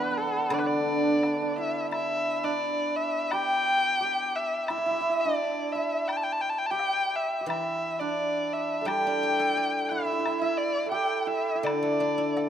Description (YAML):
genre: chinese traditional, Chinese chamber ensemble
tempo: 86 BPM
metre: 2/4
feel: rubato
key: D zhi mode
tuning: A4 = 441 Hz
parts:
  - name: dark erhu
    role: melody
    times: 0.0-12.5 s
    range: A4 to A5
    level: -28 LUFS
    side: left 2 dB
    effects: none
  - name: hammered dulcimer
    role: second line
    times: 0.0-12.5 s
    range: B3 to A4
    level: -29 LUFS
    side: right 5 dB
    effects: none
  - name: guzheng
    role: accompaniment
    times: 0.0-2.6, 7.5-12.5 s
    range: D3 to D5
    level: -32 LUFS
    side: left 4 dB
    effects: none
  - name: woodblock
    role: percussion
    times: 0.5-12.5 s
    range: none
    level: -38 LUFS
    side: left 3 dB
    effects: none
room: moderate concert hall reverb, RT60 2.3 s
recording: close, detailed microphones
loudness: -25 LUFS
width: side -9 dB against mid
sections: 0.0-1.9 A section; 1.9-12.5 B section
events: none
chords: none